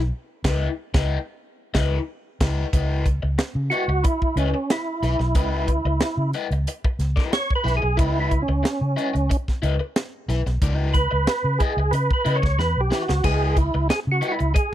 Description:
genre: funk.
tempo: 91 BPM.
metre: 4/4.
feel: straight.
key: C# minor.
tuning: A4 = 439 Hz.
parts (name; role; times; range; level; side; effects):
vintage muted fingered electric bass; bass; 0.0-14.5 s; B1 to C#3; -22 LUFS; equal; none.
raw garage guitar; accompaniment; 0.4-14.6 s; E4 to E5; -29 LUFS; left 6 dB; overdrive, phaser.
tight funk drum kit; drums; 0.4-14.7 s; crash cymbal, hi-hat, kick drum, snare drum; -23 LUFS; equal; none.
percussive tonewheel organ; melody; 3.7-14.7 s; C#4 to C#5; -24 LUFS; right 2 dB; overdrive, chorus vibrato, stopped rotary speaker.
room: studio reverb.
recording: dry, close 1970s-style studio recording.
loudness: -20 LUFS.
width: side -12 dB against mid.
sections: 0.0-2.7 A section; 2.7-14.7 B section.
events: band accent 0.1-2.7; tonewheel organ solo 2.7-14.7; drum fill 12.6-13.2.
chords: 0.0 C#m9.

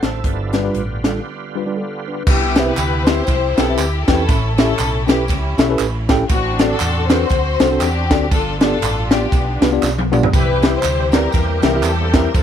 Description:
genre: uptempo gospel.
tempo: 119 BPM.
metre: 4/4.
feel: swing 58% on 8ths.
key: C major.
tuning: A4 = 440 Hz.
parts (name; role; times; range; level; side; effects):
tine electric piano; accompaniment; 0.0-12.3 s; G2 to A5; -20 LUFS; left 1 dB; overdrive, medium stereo tremolo.
bright tonewheel organ; sustained chords; 0.0-2.2, 10.3-12.4 s; D3 to A4; -26 LUFS; right 4 dB; slow rotary speaker, chorus vibrato.
fingered electric bass; bass; 0.0-12.4 s; G1 to F2; -21 LUFS; right 1 dB; none.
crisp fusion drum kit; drums; 0.0-12.4 s; crash cymbal, hi-hat, kick drum, ride cymbal, snare drum, toms; -18 LUFS; equal; none.
rich studio string section; melody; 2.3-12.4 s; B3 to C5; -21 LUFS; left 4 dB; none.
tambourine and handclaps; percussion; 2.3-12.4 s; none; -29 LUFS; right 9 dB; none.
room: studio reverb.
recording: none.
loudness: -14 LUFS.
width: side -9 dB against mid.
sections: 0.0-2.3 A section; 2.3-12.4 B section.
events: break 1.3-2.3; drum fill 9.8-10.3.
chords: 0.2 G7; 2.3 Cmaj7; 4.3 A7; 6.3 D7/A; 8.3 G7; 10.3 Cmaj7; 11.3 C7.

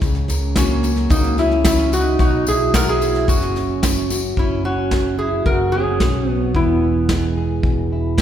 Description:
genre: acoustic folk duo or small band.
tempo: 110 BPM.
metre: 4/4.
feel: straight.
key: F# mixolydian.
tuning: A4 = 441 Hz.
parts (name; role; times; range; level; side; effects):
nylon-string guitar; accompaniment; 0.0-8.2 s; F#2 to A#4; -24 LUFS; left 1 dB; none.
fretless electric bass; bass; 0.0-8.2 s; E1 to C#2; -22 LUFS; equal; none.
soft brush drum kit; drums; 0.0-8.2 s; kick drum, snare drum; -20 LUFS; left 1 dB; none.
tambourine; percussion; 0.0-4.2 s; none; -30 LUFS; left 5 dB; none.
lap resonator guitar; melody; 0.6-7.3 s; C#4 to A#4; -21 LUFS; equal; none.
pedal steel guitar; second line; 0.6-7.3 s; A#3 to F#4; -24 LUFS; right 4 dB; none.
room: wet concert hall reverb, RT60 2.0 s.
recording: recorded in a church or concert hall.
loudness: -15 LUFS.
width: side -10 dB against mid.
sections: 0.0-4.4 A section; 4.4-8.2 B section.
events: none.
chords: 0.0 F#/C#; 2.2 B5; 3.3 F#5; 4.4 F#sus2; 6.5 E.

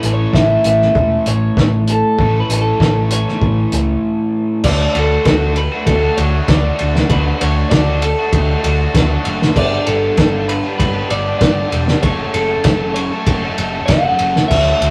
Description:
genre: indie rock.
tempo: 98 BPM.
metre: 4/4.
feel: straight.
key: D major.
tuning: A4 = 439 Hz.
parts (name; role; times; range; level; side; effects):
electric guitar through a small old amp; melody; 0.0-14.9 s; A4 to F#5; -21 LUFS; equal; none.
raw garage guitar; riff; 0.0-14.9 s; F#2 to A4; -23 LUFS; equal; overdrive.
hollow-body short-scale picked electric bass; bass; 0.0-14.9 s; E1 to D2; -21 LUFS; equal; none.
cloth-damped thuddy drum kit; drums; 0.0-14.9 s; crash cymbal, hi-hat, kick drum, ride cymbal, snare drum; -19 LUFS; equal; none.
room: moderate small room reverb, RT60 0.5 s.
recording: rough rehearsal-room recording.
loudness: -15 LUFS.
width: mono.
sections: 0.0-4.7 A section; 4.7-14.9 B section.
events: break 4.0-4.7.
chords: 0.0 A; 4.7 D; 9.6 G; 12.0 F#m.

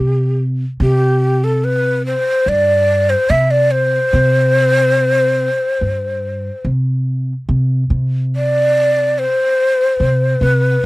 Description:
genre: Persian modal ensemble.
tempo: 72 BPM.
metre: 4/4.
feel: straight.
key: unclear.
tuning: A4 = 438 Hz.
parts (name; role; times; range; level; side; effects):
breathy mellow ney; melody; 0.0-10.9 s; G4 to E5; -14 LUFS; equal; none.
upright bass; bass; 0.0-10.7 s; G2 to C3; -16 LUFS; equal; none.
room: little or no reverb.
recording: dry, close 1970s-style studio recording.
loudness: -13 LUFS.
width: side -20 dB against mid.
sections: 0.0-7.5 A section; 7.5-10.9 B section.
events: none.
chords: none.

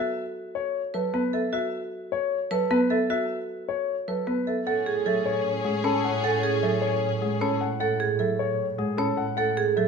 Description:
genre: classical, minimalist pattern music.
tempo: 153 BPM.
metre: 4/4.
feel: straight.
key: A major from 4.7 s.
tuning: A4 = 441 Hz.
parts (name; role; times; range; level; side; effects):
warm grand piano; melody; 0.0-9.9 s; G#4 to F#5; -28 LUFS; left 9 dB; none.
marimba with hard mallets; arpeggios; 0.0-9.9 s; F#4 to C#5; -28 LUFS; right 6 dB; none.
folk marimba with medium hard mallets; accompaniment; 0.9-9.9 s; F#3 to C#4; -30 LUFS; right 1 dB; none.
warm symphonic violin section; sustained chords; 4.7-7.6 s; C#4 to G#4; -30 LUFS; left 5 dB; none.
dark symphonic double bass section; bass; 4.7-9.9 s; A2; -32 LUFS; right 5 dB; none.
room: moderate recital hall reverb, RT60 1.4 s.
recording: minimal, uncompressed stereo recording.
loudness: -24 LUFS.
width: side -5 dB against mid.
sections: 0.0-4.7 A section; 4.7-9.9 B section.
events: none.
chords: 0.0 F#madd11; 4.7 Amaj7.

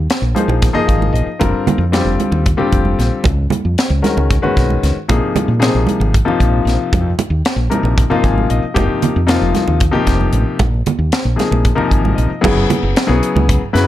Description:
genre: electric jazz fusion.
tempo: 229 BPM (eighths).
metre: 7/8.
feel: straight.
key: Bb minor.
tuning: A4 = 440 Hz.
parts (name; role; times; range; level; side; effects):
woody fretless electric bass; bass; 0.0-13.9 s; F1 to Bb2; -16 LUFS; equal; none.
crisp fusion drum kit; drums; 0.1-13.9 s; crash cymbal, hi-hat, kick drum, snare drum; -18 LUFS; equal; none.
congas; percussion; 0.1-13.5 s; none; -20 LUFS; right 5 dB; none.
clear concert grand piano; accompaniment; 0.3-13.9 s; C3 to Ab5; -17 LUFS; left 4 dB; none.
room: light reverb, studio ambience.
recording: dark, warm production.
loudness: -12 LUFS.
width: side -13 dB against mid.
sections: 0.0-12.4 A section; 12.4-13.9 B section.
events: grand piano fill 0.6-1.4, 8.0-8.8, 11.7-12.4.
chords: 0.0 Bb9sus4; 1.4 Fsus4; 3.2 Db9sus4; 5.1 Bb9sus4; 8.8 F9sus4; 10.6 Bb9sus4; 12.4 Gb9sus4.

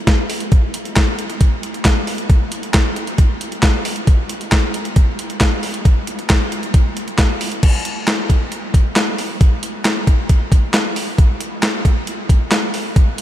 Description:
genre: pop.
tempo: 135 BPM.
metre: 4/4.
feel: straight.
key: none.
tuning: none.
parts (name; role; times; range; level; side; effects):
clean 12-bit digital drum machine; drums; 0.1-13.2 s; crash cymbal, handclaps, hi-hat, kick drum, snare drum; -14 LUFS; equal; none.
room: light reverb.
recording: none.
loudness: -14 LUFS.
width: side -12 dB against mid.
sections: 0.0-7.6 A section; 7.6-13.2 B section.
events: none.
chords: none.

